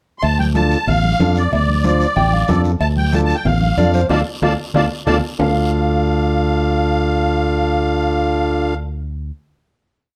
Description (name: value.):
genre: latin, cumbia.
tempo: 186 BPM.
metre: 4/4.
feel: straight.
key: D minor.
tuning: A4 = 440 Hz.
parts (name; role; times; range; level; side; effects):
musette accordion; melody; 0.2-8.7 s; D5 to C6; -24 LUFS; equal; none.
fingered electric bass; bass; 0.2-9.3 s; A1 to F2; -20 LUFS; equal; none.
congas; percussion; 0.2-5.5 s; none; -25 LUFS; equal; none.
cowbell and timbales; percussion; 0.2-5.5 s; none; -28 LUFS; equal; none.
guiro; percussion; 0.2-5.5 s; none; -39 LUFS; equal; none.
overdriven combo organ; accompaniment; 0.6-8.7 s; D4 to C5; -23 LUFS; equal; none.
mellow electric guitar; second line; 2.2-9.3 s; A4 to G5; -25 LUFS; equal; none.
room: moderate studio reverb, RT60 0.7 s.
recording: dark, warm production.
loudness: -17 LUFS.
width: mono.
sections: 0.0-0.2 pickup bar; 0.2-5.4 groove; 5.4-8.0 final chord.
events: band accent 4.1-5.4; drum fill 4.6-5.4.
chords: 0.2 Dm.